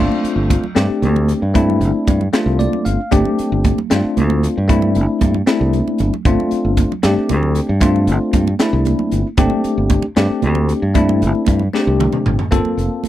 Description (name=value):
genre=electric jazz fusion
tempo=77 BPM (dotted quarters)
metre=6/8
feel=straight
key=unclear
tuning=A4 = 440 Hz
part: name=bell-like tine electric piano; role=accompaniment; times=0.0-13.1 s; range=A3 to F5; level=-18 LUFS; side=left 2 dB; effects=medium stereo tremolo, wide subtle chorus
part: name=fingered electric bass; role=bass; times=0.0-13.1 s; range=F1 to G2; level=-17 LUFS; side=equal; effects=none
part: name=congas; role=percussion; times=0.1-13.1 s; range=none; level=-24 LUFS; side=right 11 dB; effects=none
part: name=crisp fusion drum kit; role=drums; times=0.2-13.1 s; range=hi-hat, kick drum, snare drum, toms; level=-18 LUFS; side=equal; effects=none
room=little or no reverb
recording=none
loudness=-13 LUFS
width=side -13 dB against mid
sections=0.0-12.5 A section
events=tine electric piano fill 2.3-3.1; drum fill 5.6-6.3, 11.7-12.5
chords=0.0 G9sus4; 12.5 Gm11